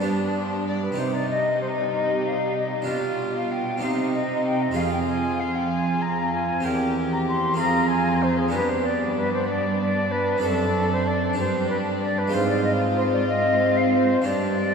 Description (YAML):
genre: classical, baroque-style concerto movement with solo episodes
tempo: 63 BPM (dotted quarters)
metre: 6/8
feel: straight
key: C minor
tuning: A4 = 436 Hz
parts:
  - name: rich chamber violin section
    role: melody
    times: 0.0-14.7 s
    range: G4 to D5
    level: -34 LUFS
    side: left 7 dB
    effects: none
  - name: rich chamber violin section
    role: second line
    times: 0.0-14.7 s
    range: D4 to G4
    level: -30 LUFS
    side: left 2 dB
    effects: none
  - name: harpsichord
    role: accompaniment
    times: 0.0-14.7 s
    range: E2 to C5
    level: -30 LUFS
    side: right 2 dB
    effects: none
  - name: rich studio viola section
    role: accompaniment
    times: 0.0-14.7 s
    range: G3 to D4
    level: -28 LUFS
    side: right 1 dB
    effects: none
  - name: rich studio cello section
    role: bass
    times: 0.0-14.7 s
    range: E2 to C3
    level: -28 LUFS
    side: right 3 dB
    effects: none
  - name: concert flute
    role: melody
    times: 0.7-14.7 s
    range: Ab4 to C6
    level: -25 LUFS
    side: left 1 dB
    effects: none
room: wet church reverb, RT60 3.7 s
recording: minimal, uncompressed stereo recording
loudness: -21 LUFS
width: side -6 dB against mid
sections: 1.0-14.7 A section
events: none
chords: 0.0 G; 1.0 Cm; 2.9 G7/B; 3.8 Cm; 4.8 Fm; 6.6 C7/E; 7.6 Fm; 8.5 G; 10.4 D7/F#; 11.4 G5; 12.3 Fm/Ab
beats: 0.00 | 0.97 1.93 | 2.88 3.82 | 4.76 5.70 | 6.64 7.59 | 8.54 9.48 | 10.43 11.38 | 12.33 13.29 | 14.26